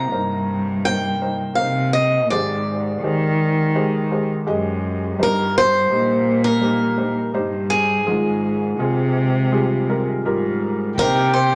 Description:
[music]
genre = acoustic folk-pop ballad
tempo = 83 BPM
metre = 4/4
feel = straight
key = unclear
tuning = A4 = 441 Hz
[part]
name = picked swing-style acoustic guitar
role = melody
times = 0.0-11.6 s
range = Ab4 to Bb5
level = -23 LUFS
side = equal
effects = none
[part]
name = felt-muted upright piano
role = accompaniment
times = 0.0-11.6 s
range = G1 to Eb5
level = -26 LUFS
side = equal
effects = none
[part]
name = warm cello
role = bass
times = 0.0-11.6 s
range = Gb2 to Eb3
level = -24 LUFS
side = equal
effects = none
[part]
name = dark violin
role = second line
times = 11.0-11.6 s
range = G4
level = -20 LUFS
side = equal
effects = none
[part]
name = vintage brush drum kit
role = drums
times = 11.0-11.5 s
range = crash cymbal, hi-hat, kick drum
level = -34 LUFS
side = equal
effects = none
[sound]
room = moderate large studio reverb, RT60 1.4 s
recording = none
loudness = -20 LUFS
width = mono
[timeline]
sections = 0.0-11.0 A section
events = none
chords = 0.0 Cm7; 2.3 Abmaj7; 5.2 Eb6/G; 8.1 Fmadd9/Ab; 11.0 Cm7

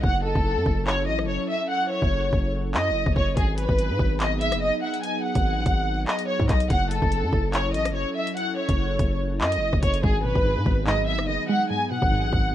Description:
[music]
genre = hip hop, drill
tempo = 144 BPM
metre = 4/4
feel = half-time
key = G# phrygian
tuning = A4 = 441 Hz
[part]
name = warm studio violin section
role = melody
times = 0.0-12.5 s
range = G#4 to G#5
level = -26 LUFS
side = equal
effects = low-pass filter, digital delay
[part]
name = airy breathy pad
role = sustained chords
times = 0.0-12.5 s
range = F#3 to A4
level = -32 LUFS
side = equal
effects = chorus
[part]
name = distorted 808-style bass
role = bass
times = 0.0-12.5 s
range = F#1 to G#2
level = -26 LUFS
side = equal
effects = distortion
[part]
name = drill drum kit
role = drums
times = 0.0-12.4 s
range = handclaps, hi-hat, kick drum, rim click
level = -25 LUFS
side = equal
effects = vintage 12-bit sampler grit
[part]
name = warbly dusty pluck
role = accompaniment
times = 10.0-12.5 s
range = G#2 to G#3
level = -29 LUFS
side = right 2 dB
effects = chorus, low-pass filter
[sound]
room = digital ambience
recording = rough home demo mix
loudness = -21 LUFS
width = side -12 dB against mid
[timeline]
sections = 0.0-12.5 A section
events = break 0.0-3.4; hi-hats muted 10.0-12.5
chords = 0.0 F#m7; 3.4 G#m7; 6.7 F#m7; 10.0 G#m7

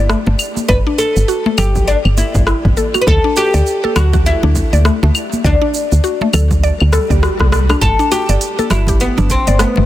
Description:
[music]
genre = organic downtempo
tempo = 101 BPM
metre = 4/4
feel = swing 59% on 16ths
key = unclear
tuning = A4 = 440 Hz
[part]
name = oud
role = melody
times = 0.0-9.9 s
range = B3 to B4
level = -18 LUFS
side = left 2 dB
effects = tape echo
[part]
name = mallet-like synth pluck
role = arpeggios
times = 0.0-9.8 s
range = A3 to D5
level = -20 LUFS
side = left 1 dB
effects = chorus, tape echo
[part]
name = woody FM bass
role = bass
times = 0.0-9.9 s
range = G1 to D2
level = -13 LUFS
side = equal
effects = sidechain pumping
[part]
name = organic electronic drum kit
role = drums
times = 0.1-9.7 s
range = cabasa, claves, hi-hat, rim click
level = -21 LUFS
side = equal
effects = small room ambience, soft clipping on snare
[part]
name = congas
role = percussion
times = 0.3-9.9 s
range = none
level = -24 LUFS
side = right 1 dB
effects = none
[part]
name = electronic kick drum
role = drums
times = 0.7-9.4 s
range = none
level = -17 LUFS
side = equal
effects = small room ambience
[part]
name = swell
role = sound effects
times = 6.8-7.8 s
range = none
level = -26 LUFS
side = right 2 dB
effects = none
[sound]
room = digital ambience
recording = dense, heavily limited modern master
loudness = -11 LUFS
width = side -14 dB against mid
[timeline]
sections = 0.0-7.8 A section; 7.8-9.9 A section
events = swell 6.8-7.8; drum fill 6.9-7.8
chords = 0.0 G5; 3.1 D; 7.8 G

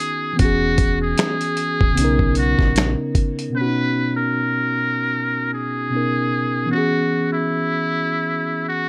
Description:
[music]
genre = lo-fi hip hop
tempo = 76 BPM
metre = 4/4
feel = swing 56% on 16ths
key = B major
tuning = A4 = 440 Hz
[part]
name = trumpet with metal mute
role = melody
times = 0.0-8.9 s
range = E4 to B4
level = -25 LUFS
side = equal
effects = none
[part]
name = mellow tine electric piano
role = accompaniment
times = 0.0-8.9 s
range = B2 to A#4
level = -24 LUFS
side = equal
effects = none
[part]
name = sub bass with octave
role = bass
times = 0.4-3.0 s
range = D#1 to B1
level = -25 LUFS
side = equal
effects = none
[part]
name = dusty soul sampler-style drum kit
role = drums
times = 0.4-3.5 s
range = finger snaps, hi-hat, kick drum, snare drum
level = -21 LUFS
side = equal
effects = none
[sound]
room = moderate small room reverb, RT60 0.6 s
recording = none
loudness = -20 LUFS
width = mono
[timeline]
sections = 0.0-3.5 A section; 3.5-8.9 B section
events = none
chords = 0.4 E69; 2.0 Bmaj9; 3.5 Bmaj7; 6.7 E69

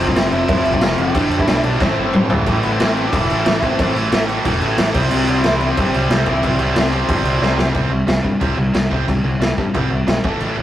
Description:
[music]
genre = punk rock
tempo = 182 BPM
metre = 4/4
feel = straight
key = unclear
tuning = A4 = 441 Hz
[part]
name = smooth overdriven lead guitar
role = melody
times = 0.0-6.6 s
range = E3 to G5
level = -22 LUFS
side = left 1 dB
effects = none
[part]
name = distorted electric guitar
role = riff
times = 0.0-10.6 s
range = F2 to C4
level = -25 LUFS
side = left 4 dB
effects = distortion
[part]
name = raw garage guitar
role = riff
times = 0.0-7.6 s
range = F2 to C4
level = -22 LUFS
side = equal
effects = overdrive
[part]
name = tight distorted guitar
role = riff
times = 0.0-10.6 s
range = F2 to C4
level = -24 LUFS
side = right 3 dB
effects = distortion
[part]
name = growling picked electric bass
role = bass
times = 0.0-10.6 s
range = E1 to G2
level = -22 LUFS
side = equal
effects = overdrive
[part]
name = raw garage drum kit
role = drums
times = 0.1-10.5 s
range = crash cymbal, kick drum, snare drum, toms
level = -18 LUFS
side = equal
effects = none
[sound]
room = light reverb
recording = rough rehearsal-room recording, tube saturation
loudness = -14 LUFS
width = side -12 dB against mid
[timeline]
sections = 0.0-2.5 A section; 2.5-7.8 B section; 7.8-10.6 C section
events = drum fill 1.8-2.5, 7.4-7.8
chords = 0.0 F5; 1.1 G; 1.8 Am; 4.9 C; 7.8 C5

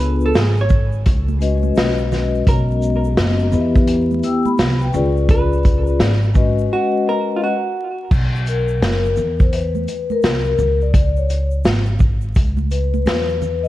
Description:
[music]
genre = hip hop, jazz-hop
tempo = 85 BPM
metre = 4/4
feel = swing 62% on 16ths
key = unclear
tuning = A4 = 440 Hz
[part]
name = vintage hollow-body jazz guitar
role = melody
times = 0.0-8.1 s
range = E#4 to C#5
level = -24 LUFS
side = right 3 dB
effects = tape echo
[part]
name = vibraphone with soft mallets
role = accompaniment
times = 0.0-13.7 s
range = G#3 to E6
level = -20 LUFS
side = left 4 dB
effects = none
[part]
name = upright bass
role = bass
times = 0.0-13.7 s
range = F#1 to E2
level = -19 LUFS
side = equal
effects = none
[part]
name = vintage drum kit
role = drums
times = 0.0-13.6 s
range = crash cymbal, hi-hat, kick drum, shaker, snare drum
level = -17 LUFS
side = equal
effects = vintage 12-bit sampler grit
[part]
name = egg shaker and congas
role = percussion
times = 0.2-13.7 s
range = none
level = -30 LUFS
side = right 6 dB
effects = none
[sound]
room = light reverb, small room ambience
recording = dark, warm production, vinyl crackle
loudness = -15 LUFS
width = side -15 dB against mid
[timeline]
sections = 0.0-8.1 A section; 8.1-13.7 A section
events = hollow-body jazz guitar solo 0.0-8.1; break 6.7-8.1; vibraphone solo 8.1-13.7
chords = 0.0 C#7b9; 1.1 F#sus4/C#; 2.5 Bmaj13; 3.5 Em; 4.9 C#7b9; 6.7 F#sus4; 8.1 B5; 9.2 C7; 10.6 C#5; 12.4 C#m7

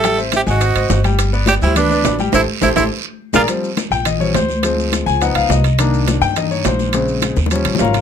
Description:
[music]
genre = Afro-Cuban jazz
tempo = 209 BPM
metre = 4/4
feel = straight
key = G major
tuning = A4 = 440 Hz
[part]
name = breathy tenor saxophone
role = melody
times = 0.0-3.4 s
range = D4 to A4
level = -17 LUFS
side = right 4 dB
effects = none
[part]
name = breathy mellow silver concert flute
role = second line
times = 0.0-3.4 s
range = Bb4 to E5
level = -24 LUFS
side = right 6 dB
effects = none
[part]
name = clear baby grand piano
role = accompaniment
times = 0.0-8.0 s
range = Db3 to Ab5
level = -19 LUFS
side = left 5 dB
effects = none
[part]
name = upright bass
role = bass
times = 0.0-8.0 s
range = G1 to G2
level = -18 LUFS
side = equal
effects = none
[part]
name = bongos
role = percussion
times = 0.0-8.0 s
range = none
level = -26 LUFS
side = left 8 dB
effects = none
[part]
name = congas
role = percussion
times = 0.0-7.9 s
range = none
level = -25 LUFS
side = left 4 dB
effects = none
[part]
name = guiro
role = percussion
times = 0.0-8.0 s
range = none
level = -29 LUFS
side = right 10 dB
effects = none
[part]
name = maracas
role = percussion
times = 0.0-8.0 s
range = none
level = -30 LUFS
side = left 8 dB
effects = none
[part]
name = timbales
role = percussion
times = 0.0-8.0 s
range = none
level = -22 LUFS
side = right 9 dB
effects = none
[sound]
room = light reverb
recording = close, detailed microphones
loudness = -13 LUFS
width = side -8 dB against mid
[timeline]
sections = 0.0-3.5 A section; 3.5-8.0 B section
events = drum fill 2.3-3.5, 7.4-8.0; band accent 2.3-3.5; grand piano solo 3.5-8.0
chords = 0.0 Am7; 0.6 Ab7; 1.2 Gadd9; 2.3 Am7; 2.9 Bb7; 3.5 Bb69; 4.6 Dm7b5; 5.2 Db9; 5.8 Cm9; 6.9 Bbm9

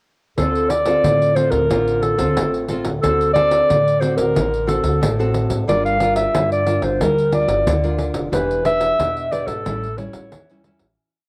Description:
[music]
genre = samba and choro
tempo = 90 BPM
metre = 4/4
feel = straight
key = D minor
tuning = A4 = 440 Hz
[part]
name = mellow clarinet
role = melody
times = 0.4-10.6 s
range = A4 to F5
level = -21 LUFS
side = equal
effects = cassette tape
[part]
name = nylon-string guitar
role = accompaniment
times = 0.4-11.0 s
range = A2 to B4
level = -26 LUFS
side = equal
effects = cassette tape
[part]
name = upright bass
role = bass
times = 0.4-11.0 s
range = E1 to D3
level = -26 LUFS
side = equal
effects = none
[part]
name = pandeiro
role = percussion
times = 0.4-11.0 s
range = none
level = -27 LUFS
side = equal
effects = none
[sound]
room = moderate spring reverb, RT60 2.0 s, small room ambience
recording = home recording on cassette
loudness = -18 LUFS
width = mono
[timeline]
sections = 0.4-11.0 groove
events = fade-out 8.3-11.0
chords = 0.4 Dm7; 3.0 D7; 5.7 Gm7; 8.3 Em7; 9.7 A7

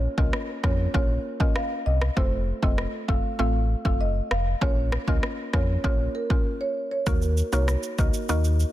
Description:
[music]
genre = dancehall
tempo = 98 BPM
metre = 4/4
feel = straight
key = Bb harmonic minor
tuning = A4 = 440 Hz
[part]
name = sub bass with octave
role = bass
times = 0.0-8.6 s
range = F1 to F2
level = -24 LUFS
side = equal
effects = none
[part]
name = marimba with medium mallets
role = melody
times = 0.2-8.4 s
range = Bb4 to F5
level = -31 LUFS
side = right 1 dB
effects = ping-pong delay
[part]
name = mallet-like synth pluck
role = accompaniment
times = 0.2-8.5 s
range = A3 to Bb4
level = -30 LUFS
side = right 1 dB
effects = chorus
[part]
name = afro-pop drum kit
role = drums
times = 0.2-8.7 s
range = kick drum, rim click, shaker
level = -26 LUFS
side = equal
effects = soft clipping on snare
[sound]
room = digital ambience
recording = dense, heavily limited modern master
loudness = -22 LUFS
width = side -14 dB against mid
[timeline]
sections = 0.0-7.1 A section; 7.1-8.7 B section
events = break 6.5-7.1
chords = 0.0 Bbm; 2.2 F; 4.6 Bbm; 7.1 Ebm

